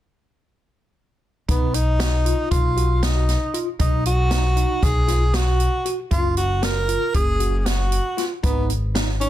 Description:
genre	progressive instrumental, band music in an uneven meter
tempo	233 BPM (eighths)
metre	9/8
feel	straight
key	B lydian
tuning	A4 = 440 Hz
part	breathy tenor saxophone	melody	1.5-9.3 s	B3 to A#4	-24 LUFS	right 1 dB	plate reverb
part	tine electric piano	arpeggios	1.5-9.3 s	D#4 to F#4	-29 LUFS	left 1 dB	fast stereo tremolo, plate reverb
part	upright bass	bass	1.5-9.3 s	F#1 to B1	-21 LUFS	equal	none
part	open jazz drum kit	drums	1.5-9.3 s	hi-hat, kick drum, snare drum	-23 LUFS	equal	none
room	light reverb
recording	dense, heavily limited modern master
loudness	-18 LUFS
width	side -13 dB against mid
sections	1.5-9.3 A section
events	none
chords	1.5 B; 6.1 F#maj7; 8.4 G#m

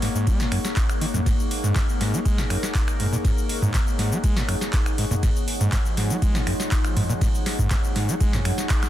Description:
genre	acid house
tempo	121 BPM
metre	4/4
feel	straight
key	unclear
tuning	A4 = 440 Hz
part	warbly tape-like pad	sustained chords	0.0-8.9 s	F3 to Db5	-33 LUFS	left 4 dB	chorus, built-in reverb, sidechain pumping
part	overdriven acid bass	riff	0.0-8.5 s	Gb2 to Ab3	-26 LUFS	equal	distortion
part	booming analog drum machine	drums	0.0-8.9 s	finger snaps, handclaps, hi-hat, ride cymbal, shaker, snare drum, toms	-27 LUFS	equal	overdrive
part	deep dark ambient pad	texture	0.0-8.9 s	Eb4 to Gb5	-31 LUFS	equal	chorus, built-in reverb, sidechain pumping
part	electronic kick drum	drums	0.3-8.8 s	none	-23 LUFS	equal	overdrive
room	light reverb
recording	dense, heavily limited modern master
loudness	-20 LUFS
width	side -13 dB against mid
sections	0.0-8.9 A section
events	band accent 8.7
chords	0.0 Ab5

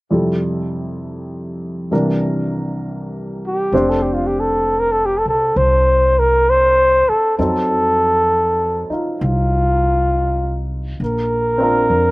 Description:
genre	jazz ballad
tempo	66 BPM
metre	4/4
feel	swing 67% on 8ths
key	F major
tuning	A4 = 439 Hz
part	warm baby grand piano	accompaniment	0.1-12.1 s	C2 to C5	-21 LUFS	equal	slapback echo
part	breathy flugelhorn	melody	3.5-12.1 s	F4 to C5	-15 LUFS	equal	none
part	upright bass	bass	3.7-12.1 s	F1 to F2	-20 LUFS	equal	none
room	little or no reverb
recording	recorded outdoors, with no room sound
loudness	-14 LUFS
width	side -22 dB against mid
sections	0.1-3.7 A section; 3.7-12.1 B section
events	none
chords	0.1 Fmaj7; 1.9 C7; 3.7 Fsus2; 7.4 F7b9; 11.0 Bbadd9

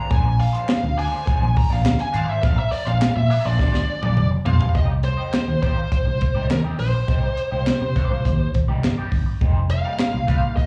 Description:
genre	funk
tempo	103 BPM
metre	4/4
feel	straight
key	unclear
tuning	A4 = 442 Hz
part	high-gain lead guitar	melody	0.0-10.7 s	Bb4 to Bb5	-28 LUFS	equal	distortion, slapback echo, plate reverb
part	electric guitar at the edge of break-up	accompaniment	0.0-10.6 s	Bb3 to Eb5	-35 LUFS	equal	wah, spring reverb, slapback echo, plate reverb
part	fingered electric bass	bass	0.1-10.6 s	F1 to C3	-23 LUFS	equal	none
part	tight funk drum kit	drums	0.1-10.7 s	handclaps, hi-hat, kick drum, snare drum, toms	-24 LUFS	equal	none
part	warm studio string section	sustained chords	9.4-10.7 s	G3 to Eb4	-35 LUFS	equal	none
room	light reverb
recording	live gig heard through the venue's PA, cassette tape, club reverb, small room reverb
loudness	-20 LUFS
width	mono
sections	0.0-4.8 A section; 4.8-10.7 B section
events	lead electric guitar solo 0.0-4.8; drum fill 3.6-4.8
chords	0.0 Bb9; 4.8 Cm9; 9.4 F9sus4

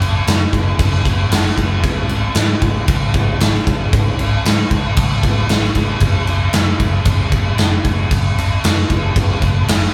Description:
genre	hard rock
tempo	115 BPM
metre	4/4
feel	straight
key	unclear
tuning	A4 = 436 Hz
part	hollow-body short-scale picked electric bass	bass	0.0-9.9 s	Gb1 to Ab2	-21 LUFS	equal	none
part	big rock drum kit	drums	0.0-9.9 s	crash cymbal, kick drum, snare drum	-17 LUFS	equal	none
room	moderate large studio reverb, RT60 1.3 s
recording	band playing live in one room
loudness	-16 LUFS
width	mono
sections	0.0-9.9 A section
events	none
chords	none

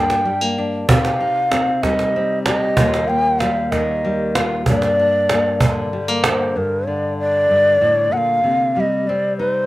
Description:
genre	acoustic folk duo or small band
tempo	64 BPM (dotted quarters)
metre	6/8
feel	straight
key	G minor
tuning	A4 = 441 Hz
part	breathy mellow long shakuhachi	melody	0.0-9.7 s	Bb4 to G5	-17 LUFS	equal	none
part	nylon-string guitar	accompaniment	0.0-9.7 s	Eb2 to G4	-21 LUFS	left 1 dB	none
part	cajon	percussion	0.1-6.4 s	none	-19 LUFS	right 2 dB	none
room	little or no reverb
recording	recorded outdoors, with no room sound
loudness	-15 LUFS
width	side -17 dB against mid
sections	0.0-6.5 A section; 6.5-9.7 A section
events	none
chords	0.0 Gm; 0.9 Cm; 2.8 Ebadd9; 4.7 Gm; 8.4 Cmadd9

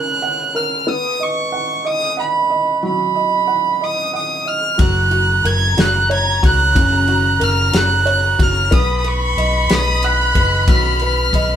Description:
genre	six-eight pop ballad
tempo	61 BPM (dotted quarters)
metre	6/8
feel	straight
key	unclear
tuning	A4 = 440 Hz
part	warm violin	melody	0.0-11.6 s	B5 to Ab6	-17 LUFS	right 3 dB	none
part	felt-muted upright piano	accompaniment	0.0-11.6 s	Db3 to Gb5	-22 LUFS	equal	none
part	warm studio violin section	second line	4.8-11.6 s	Bb5 to B5	-23 LUFS	left 3 dB	none
part	vintage muted fingered electric bass	bass	4.8-11.6 s	Gb1 to Db2	-18 LUFS	left 1 dB	none
part	loose indie drum kit	drums	4.8-11.5 s	kick drum, ride cymbal, snare drum	-18 LUFS	left 1 dB	none
room	wet studio reverb, RT60 0.6 s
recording	band playing live in one room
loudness	-14 LUFS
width	side -9 dB against mid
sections	0.0-11.6 A section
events	none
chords	0.0 Gb; 0.9 B; 4.8 Gb; 8.7 B

